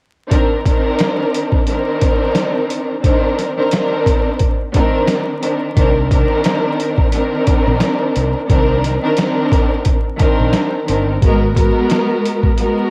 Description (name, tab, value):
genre	hip hop, boom-bap hip-hop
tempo	88 BPM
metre	4/4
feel	swing 56% on 16ths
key	C minor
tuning	A4 = 440 Hz
part	warm studio string section	accompaniment	0.3-12.9 s	Eb3 to Bb4	-18 LUFS	equal	high-pass filter, low-pass filter
part	boom bap sampler-style drum kit	drums	0.3-12.8 s	hi-hat, kick drum, snare drum	-18 LUFS	equal	cassette tape
part	mellow fretless electric bass	bass	5.8-11.7 s	G1 to C2	-21 LUFS	equal	subtle chorus
room	light reverb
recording	home recording on cassette, vinyl crackle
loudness	-16 LUFS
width	mono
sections	0.3-5.8 A section; 5.8-12.9 B section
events	none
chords	0.3 Cm9; 11.2 Abm9